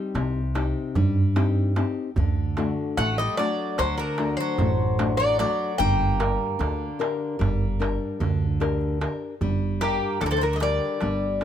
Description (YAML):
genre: greek folk, Greek bouzouki band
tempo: 149 BPM (eighths)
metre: 9/8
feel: straight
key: G harmonic minor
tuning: A4 = 440 Hz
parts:
  - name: Greek bouzouki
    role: melody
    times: 0.0-11.4 s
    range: G4 to G5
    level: -25 LUFS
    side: left 2 dB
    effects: none
  - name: Greek bouzouki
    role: second line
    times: 0.0-11.4 s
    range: C3 to Bb3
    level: -33 LUFS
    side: right 6 dB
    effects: none
  - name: nylon-string guitar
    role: accompaniment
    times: 0.0-11.4 s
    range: C3 to Bb4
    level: -28 LUFS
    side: left 5 dB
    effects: none
  - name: upright bass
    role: bass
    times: 0.1-11.4 s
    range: G1 to G2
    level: -26 LUFS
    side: equal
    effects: none
  - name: darbuka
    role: percussion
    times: 0.2-11.4 s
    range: none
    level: -28 LUFS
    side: right 5 dB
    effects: none
room: little or no reverb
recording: close, detailed microphones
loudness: -22 LUFS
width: side -10 dB against mid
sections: 0.0-9.4 A section; 9.4-11.4 B section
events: none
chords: 0.0 Cm; 2.2 D; 5.8 Gm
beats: 0.15 0.56 0.96 1.36 1.77 | 2.17 2.58 2.98 3.38 3.79 4.19 4.59 5.00 5.40 | 5.80 6.20 6.61 7.01 7.41 7.81 8.21 8.61 9.02 | 9.42 9.82 10.22 10.62 11.02 11.42